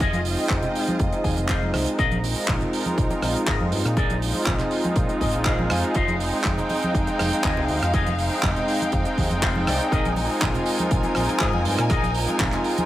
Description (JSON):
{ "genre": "nu-disco, nu disco", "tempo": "121 BPM", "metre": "4/4", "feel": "straight", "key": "F minor", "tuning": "A4 = 439 Hz", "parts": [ { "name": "rich studio string section", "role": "sustained chords", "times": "0.0-12.9 s", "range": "Ab3 to Ab5", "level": "-30 LUFS", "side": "equal", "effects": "sidechain pumping" }, { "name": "electric guitar with an envelope filter", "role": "riff", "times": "0.0-12.6 s", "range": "F4 to Ab5", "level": "-30 LUFS", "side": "left 4 dB", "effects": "lush chorus, tape echo" }, { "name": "picked electric bass with an envelope filter", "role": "bass", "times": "0.0-12.5 s", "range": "F1 to Bb2", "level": "-26 LUFS", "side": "equal", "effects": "none" }, { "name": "damped 70s drum kit", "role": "drums", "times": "0.0-12.9 s", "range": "handclaps, hi-hat, rim click", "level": "-28 LUFS", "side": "right 2 dB", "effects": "studio reverb" }, { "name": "electronic kick drum", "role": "drums", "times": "0.0-12.5 s", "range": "none", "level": "-26 LUFS", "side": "equal", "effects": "studio reverb" }, { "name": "congas", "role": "percussion", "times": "0.0-12.9 s", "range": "none", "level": "-31 LUFS", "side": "right 1 dB", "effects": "none" }, { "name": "warm analog pad", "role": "accompaniment", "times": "0.2-12.9 s", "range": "Ab3 to G5", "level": "-25 LUFS", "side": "equal", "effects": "chorus, cassette tape, sidechain pumping, tape echo" } ], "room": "light reverb, studio reverb", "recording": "none", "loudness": "-20 LUFS", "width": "side -14 dB against mid", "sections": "0.0-12.9 A section", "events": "clean electric guitar fill 1.0-2.0, 5.0-6.0, 9.2-9.9", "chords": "0.0 Fm7; 2.0 Bb7sus4; 6.0 Fm7; 9.9 Bb7sus4" }